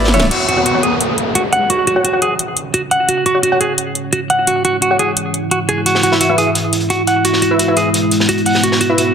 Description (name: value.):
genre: dark technical drum and bass.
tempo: 173 BPM.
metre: 4/4.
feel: straight.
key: unclear.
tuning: A4 = 440 Hz.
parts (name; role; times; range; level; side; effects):
clean electric guitar; arpeggios; 0.0-9.1 s; F#4 to F#5; -16 LUFS; right 2 dB; vintage 12-bit sampler grit, digital delay.
orchestra-hit-like synth stab; stabs; 0.0-9.0 s; E4 to F#5; -19 LUFS; left 1 dB; built-in reverb, digital delay.
crunchy breakbeat drum kit; drums; 0.0-0.3, 5.9-9.1 s; hi-hat, snare drum; -20 LUFS; equal; high-pass filter on hats, high-pass filter on snare, high-pass filter on room.
drum and bass drum kit; drums; 0.1-9.1 s; crash cymbal, hi-hat, ride cymbal, snare drum; -17 LUFS; left 1 dB; none.
deep dark ambient pad; sustained chords; 2.2-9.1 s; G#3 to C#5; -19 LUFS; equal; chorus, built-in reverb.
downlifter and riser; sound effects; 0.3-3.1, 9.1 s; none; -20 LUFS; left 1 dB; none.
room: moderate plate reverb, RT60 1.6 s.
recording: dense, heavily limited modern master.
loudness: -12 LUFS.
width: side -7 dB against mid.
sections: 0.3-9.1 A section.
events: drum fill 0.0-0.3; filter sweep on ambient pad 0.3-9.1.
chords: 0.3 F#sus2; 5.9 E.